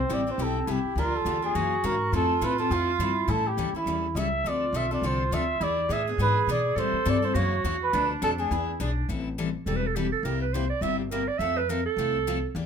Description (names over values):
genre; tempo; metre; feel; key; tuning
acoustic string swing (jazz manouche); 207 BPM; 4/4; swing 57% on 8ths; A minor; A4 = 440 Hz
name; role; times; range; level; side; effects
dark trumpet; melody; 0.0-8.8 s; E4 to E5; -27 LUFS; right 1 dB; none
clear clarinet; second line; 0.0-12.5 s; C4 to E5; -30 LUFS; right 7 dB; none
upright bass; bass; 0.0-12.7 s; E1 to B2; -30 LUFS; left 1 dB; none
picked steel-string acoustic guitar; accompaniment; 0.1-12.7 s; B2 to A4; -31 LUFS; left 6 dB; none
room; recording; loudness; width
moderate club reverb, RT60 0.8 s; minimal, uncompressed stereo recording; -24 LUFS; side -7 dB against mid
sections
0.0-9.1 A section; 9.1-12.7 B section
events
clarinet solo 9.1-12.7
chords
0.0 Cmaj7; 1.0 Gm7; 1.6 F#9; 2.1 Fmaj7; 3.3 A7; 4.5 Dm7; 5.6 E7; 6.8 Am7; 7.3 F#7; 7.9 Bm7b5; 8.5 E7; 9.1 Am7; 10.2 C7; 11.4 Fmaj7